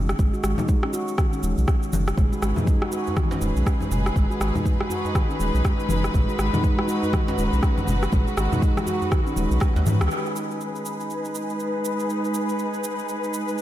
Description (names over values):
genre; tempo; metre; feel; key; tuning
afro house; 121 BPM; 4/4; swing 60% on 16ths; G# minor pentatonic; A4 = 441 Hz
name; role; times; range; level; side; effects
round analog bass; bass; 0.0-10.1 s; D#1 to G#2; -23 LUFS; equal; tube saturation, sidechain pumping
electronic rim click and cabasa; drums; 0.1-13.6 s; none; -31 LUFS; equal; none
handpan; arpeggios; 0.2-9.5 s; D#3 to F#4; -28 LUFS; equal; sidechain pumping, tape echo
electronic kick drum; drums; 0.2-9.7 s; none; -22 LUFS; equal; none
congas; percussion; 0.6-10.0 s; none; -30 LUFS; left 3 dB; none
dark studio string section; sustained chords; 2.2-13.6 s; G#3 to B4; -27 LUFS; equal; sidechain pumping, low-pass filter
djembe; percussion; 2.6-10.0 s; none; -32 LUFS; right 1 dB; none
room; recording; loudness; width
light reverb, small room reverb; none; -21 LUFS; side -13 dB against mid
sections
0.0-10.1 A section; 10.1-13.6 B section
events
band accent 10.0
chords
0.0 G#m7; 10.1 G#m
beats
| 0.19 0.69 1.18 1.68 | 2.17 2.67 3.17 3.66 | 4.16 4.66 5.15 5.65 | 6.14 6.64 7.13 7.63 | 8.13 8.62 9.12 9.61 | 10.11 10.61 11.10 11.60 | 12.09 12.59 13.08 13.58